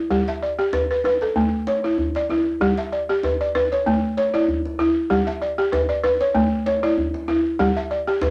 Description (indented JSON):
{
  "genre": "west african traditional, West African string and xylophone music",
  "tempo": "96 BPM",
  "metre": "4/4",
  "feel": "swing 54% on 16ths",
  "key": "G lydian",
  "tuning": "A4 = 441 Hz",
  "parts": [
    { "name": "balafon", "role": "arpeggios", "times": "0.0-8.3 s", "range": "G3 to E5", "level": "-22 LUFS", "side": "equal", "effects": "none" },
    { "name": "djembe", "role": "percussion", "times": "0.1-8.3 s", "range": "none", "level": "-31 LUFS", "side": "equal", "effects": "none" }
  ],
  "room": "wet small room reverb, RT60 0.5 s",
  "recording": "none",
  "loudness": "-21 LUFS",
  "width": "mono",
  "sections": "0.0-2.6 A section; 2.6-8.3 B section",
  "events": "none",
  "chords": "0.1 G; 1.4 A; 2.6 G; 3.9 A; 5.1 G; 6.3 A; 7.6 G5"
}